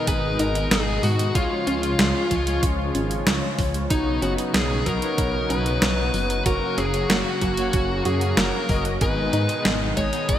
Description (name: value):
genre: synthwave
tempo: 94 BPM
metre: 4/4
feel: straight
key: G# dorian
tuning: A4 = 440 Hz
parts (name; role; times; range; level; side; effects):
- fuzz lead guitar; melody; 0.0-10.4 s; D#4 to D#5; -26 LUFS; left 1 dB; distortion, digital delay
- warm analog pad; sustained chords; 0.0-10.4 s; B2 to F#4; -29 LUFS; right 1 dB; chorus, sidechain pumping
- soft round pluck; arpeggios; 0.0-10.4 s; E#3 to G#4; -30 LUFS; right 1 dB; chorus, cassette tape, digital delay
- analog synth brass; stabs; 0.0-10.4 s; G#3 to D#5; -29 LUFS; left 3 dB; chorus, digital delay
- dark detuned saw bass; bass; 0.1-10.4 s; F#1 to G#2; -26 LUFS; equal; none
- detuned 8-bit digital drum machine; drums; 0.1-10.4 s; hi-hat, snare drum; -25 LUFS; right 1 dB; small room ambience, gated reverb
- electronic kick drum; drums; 0.1-10.4 s; none; -25 LUFS; equal; small room ambience
room: moderate lush hall reverb, RT60 2.7 s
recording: bright 1980s-style digital production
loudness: -20 LUFS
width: side -11 dB against mid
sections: 0.0-10.4 A section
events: none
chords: 0.0 G#m; 1.4 C#; 3.9 Badd9; 6.5 F#; 9.0 G#m